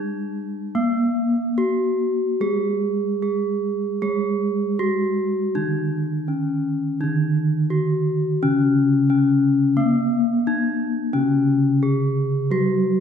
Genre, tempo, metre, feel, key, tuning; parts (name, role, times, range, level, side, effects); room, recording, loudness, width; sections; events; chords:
gamelan; 72-88 BPM; 4/4; straight; C# pelog barang; A4 = 441 Hz
gamelan-type bronze metallophone; melody; 0.0-13.0 s; A#3+20c to G#4-40c; -21 LUFS; left 2 dB
gamelan-type bronze metallophone; accompaniment; 0.0-13.0 s; C#3 to A#3+20c; -22 LUFS; right 1 dB
wet recital hall reverb, RT60 1.5 s; recorded in a church or concert hall; -19 LUFS; side -7 dB against mid
0.0-8.4 A section; 8.4-13.0 B section